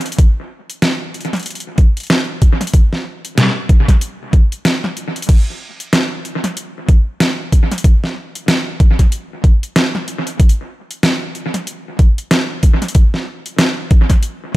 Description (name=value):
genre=glitch hop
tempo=94 BPM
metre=4/4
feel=swing 60% on 16ths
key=none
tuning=none
part: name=dubstep drum kit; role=drums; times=0.0-14.6 s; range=crash cymbal, hi-hat, snare drum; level=-17 LUFS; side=equal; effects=overdrive, analog delay
part: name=electronic kick drum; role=drums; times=0.2-14.6 s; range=none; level=-9 LUFS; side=equal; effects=overdrive
room=little or no reverb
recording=echo-heavy mix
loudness=-13 LUFS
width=side -18 dB against mid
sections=0.0-14.6 A section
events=none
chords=none